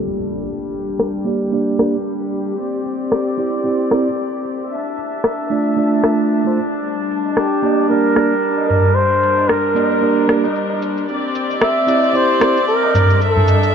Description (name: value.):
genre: organic downtempo.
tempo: 113 BPM.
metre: 4/4.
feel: swing 57% on 16ths.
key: G dorian.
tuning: A4 = 440 Hz.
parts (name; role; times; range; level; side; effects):
rich chamber string section; sustained chords; 0.0-13.7 s; G3 to A5; -21 LUFS; left 2 dB; none.
impact; sound effects; 0.0-0.5 s; none; -35 LUFS; left 2 dB; none.
electronic shaker and rim click; drums; 0.2-13.7 s; none; -21 LUFS; left 1 dB; low-pass filter on perc, low-pass filter on snare, low-pass filter on cymbals.
mellow tine electric piano; accompaniment; 1.2-12.6 s; A3 to E5; -20 LUFS; right 3 dB; medium stereo tremolo, ping-pong delay.
tabla; percussion; 7.3-13.7 s; none; -19 LUFS; equal; none.
trumpet with bucket mute; melody; 7.4-13.7 s; G4 to E5; -17 LUFS; right 1 dB; ping-pong delay.
room: moderate huge ambient reverb, RT60 4.4 s.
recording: dark, warm production, low-pass filter.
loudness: -15 LUFS.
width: side -7 dB against mid.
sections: 0.0-13.7 A section.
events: impact 0.0-0.5; filter sweep 0.0-13.7.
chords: 0.0 Gm; 2.6 Cadd9; 4.7 Dm; 6.8 Gm; 11.1 Cadd9; 13.2 D5.